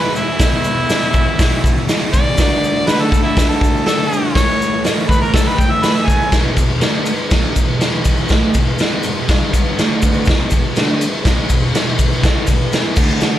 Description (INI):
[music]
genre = garage rock duo or trio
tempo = 122 BPM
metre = 4/4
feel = straight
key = unclear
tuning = A4 = 440 Hz
[part]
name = clear harmonica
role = melody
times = 0.0-6.3 s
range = E4 to G#5+21c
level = -19 LUFS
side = equal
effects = overdrive, slapback echo
[part]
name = fuzz guitar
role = riff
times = 0.0-13.4 s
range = E2 to E4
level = -19 LUFS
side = equal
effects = distortion
[part]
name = tube shaker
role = percussion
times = 0.2-13.3 s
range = none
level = -33 LUFS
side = left 2 dB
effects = none
[part]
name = raw garage drum kit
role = drums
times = 0.4-13.3 s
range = crash cymbal, hi-hat, kick drum, ride cymbal, snare drum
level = -15 LUFS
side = equal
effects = none
[sound]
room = light reverb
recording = live gig heard through the venue's PA, club ambience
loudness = -13 LUFS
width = side -12 dB against mid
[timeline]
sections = 0.0-6.3 A section; 6.3-13.4 B section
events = none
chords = 0.0 E5; 2.4 D5; 4.4 A; 6.3 E5; 9.3 G5; 9.8 D5; 10.3 E5